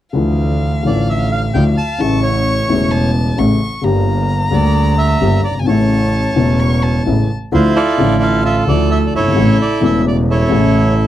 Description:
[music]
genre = tango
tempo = 131 BPM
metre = 4/4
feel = rubato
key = D minor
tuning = A4 = 436 Hz
[part]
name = dark upright piano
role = accompaniment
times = 0.1-11.1 s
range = E1 to E5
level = -16 LUFS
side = left 3 dB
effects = none
[part]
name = warm violin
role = second line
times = 0.2-7.3 s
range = F5 to C#6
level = -23 LUFS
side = left 3 dB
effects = none
[part]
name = clear double bass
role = bass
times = 0.2-11.1 s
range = E1 to D2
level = -16 LUFS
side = right 2 dB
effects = none
[part]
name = bandoneon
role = melody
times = 0.9-11.1 s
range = E4 to A5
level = -18 LUFS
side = right 2 dB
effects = none
[sound]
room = light reverb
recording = dry, close 1970s-style studio recording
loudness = -12 LUFS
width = side -12 dB against mid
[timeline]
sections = 0.2-7.5 A section; 7.5-11.1 B section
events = none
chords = 0.2 Dmadd9; 2.0 A; 3.8 Gm; 5.7 A; 7.5 Dmadd9; 9.4 A

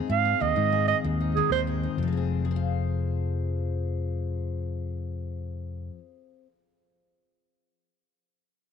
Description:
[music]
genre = highlife guitar band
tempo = 127 BPM (dotted quarters)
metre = 12/8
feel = straight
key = F minor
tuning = A4 = 440 Hz
[part]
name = picked steel-string acoustic guitar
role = accompaniment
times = 0.0-6.5 s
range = F2 to F5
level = -32 LUFS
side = left 12 dB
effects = none
[part]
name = breathy clarinet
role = melody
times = 0.1-1.6 s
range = Ab4 to F5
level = -26 LUFS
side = right 12 dB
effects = none
[part]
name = fingered electric bass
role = bass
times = 0.1-5.9 s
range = F1 to Ab2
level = -28 LUFS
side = left 1 dB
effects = none
[sound]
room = light reverb, studio reverb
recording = 1960s-style stereo with parts hard left and right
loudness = -25 LUFS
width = side -7 dB against mid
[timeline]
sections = 0.0-2.0 A section; 2.0-5.8 B section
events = clarinet solo 0.0-2.0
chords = 0.0 Ab; 2.0 Fm

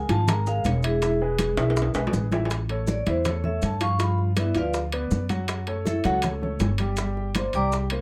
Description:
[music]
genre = Afro-Cuban jazz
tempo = 161 BPM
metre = 4/4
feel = straight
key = unclear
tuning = A4 = 440 Hz
[part]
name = vibraphone with medium hard mallets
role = melody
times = 0.0-7.7 s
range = E4 to D6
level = -29 LUFS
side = equal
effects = none
[part]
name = warm concert grand piano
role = accompaniment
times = 0.0-8.0 s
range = Fb3 to G5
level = -32 LUFS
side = equal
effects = none
[part]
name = upright bass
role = bass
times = 0.0-8.0 s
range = Fb1 to G2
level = -29 LUFS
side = equal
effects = none
[part]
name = congas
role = percussion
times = 0.1-8.0 s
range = none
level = -32 LUFS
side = equal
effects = none
[part]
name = maracas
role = percussion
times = 0.1-7.9 s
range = none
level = -45 LUFS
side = equal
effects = none
[part]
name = timbales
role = percussion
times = 0.1-8.0 s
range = none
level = -34 LUFS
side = equal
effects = none
[part]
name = bongos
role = percussion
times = 0.3-8.0 s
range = none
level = -39 LUFS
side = equal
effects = none
[sound]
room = light reverb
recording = close, detailed microphones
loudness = -25 LUFS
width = mono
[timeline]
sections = 0.0-2.5 A section; 2.5-8.0 A section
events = vibraphone solo 0.0-8.0; drum fill 1.6-2.5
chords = 0.0 Db6 (rootless); 1.0 E; 2.5 A; 4.0 G7; 5.5 F#m7; 7.0 Gm

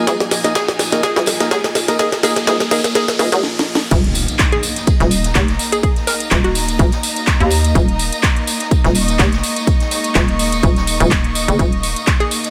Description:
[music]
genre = bass house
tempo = 125 BPM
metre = 4/4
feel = swing 54% on 16ths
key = unclear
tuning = A4 = 440 Hz
[part]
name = deep dark ambient pad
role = sustained chords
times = 0.0-12.5 s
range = Bb3 to Eb5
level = -32 LUFS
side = equal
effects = chorus, built-in reverb, sidechain pumping
[part]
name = percussive organ stab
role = stabs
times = 0.0-3.3 s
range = Bb3 to Eb5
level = -24 LUFS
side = equal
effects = chorus, sidechain pumping, dub echo
[part]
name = hollow knocking FM bass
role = bass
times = 0.0-11.9 s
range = Eb1 to Eb2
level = -19 LUFS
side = equal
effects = overdrive, sidechain pumping, high-pass filter
[part]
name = riser and impact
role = sound effects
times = 0.3-5.8 s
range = none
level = -29 LUFS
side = equal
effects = none
[part]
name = dark studio string section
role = texture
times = 0.0-12.5 s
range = Bb3 to Db6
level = -26 LUFS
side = equal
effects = sidechain pumping
[part]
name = hollow square pluck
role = melody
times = 0.1-6.9, 12.2-12.4 s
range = Gb4 to Bb4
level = -24 LUFS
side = equal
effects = chorus, dub echo
[part]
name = electronic kick drum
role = drums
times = 0.1-12.2 s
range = none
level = -18 LUFS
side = equal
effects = high-pass filter on kick
[part]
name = house drum kit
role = drums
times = 0.1-12.5 s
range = crash cymbal, handclaps, hi-hat, snare drum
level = -22 LUFS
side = equal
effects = none
[part]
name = jazz brush drum kit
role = drums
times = 0.1-12.5 s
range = hi-hat, ride cymbal, snare drum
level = -34 LUFS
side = equal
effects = none
[part]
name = tambourine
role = percussion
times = 0.1-12.5 s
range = none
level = -29 LUFS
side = equal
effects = none
[sound]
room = light reverb, small room reverb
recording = none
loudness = -16 LUFS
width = mono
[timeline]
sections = 0.0-3.9 A section; 3.9-12.5 B section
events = build-up 0.0-3.9; drum fill 0.0-3.4, 3.4-3.9; riser 0.3-3.9; filter sweep on ambient pad 0.0-3.9; stop 3.4-3.9; drop 3.9-12.5; impact 3.9-5.8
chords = 0.0 Eb5

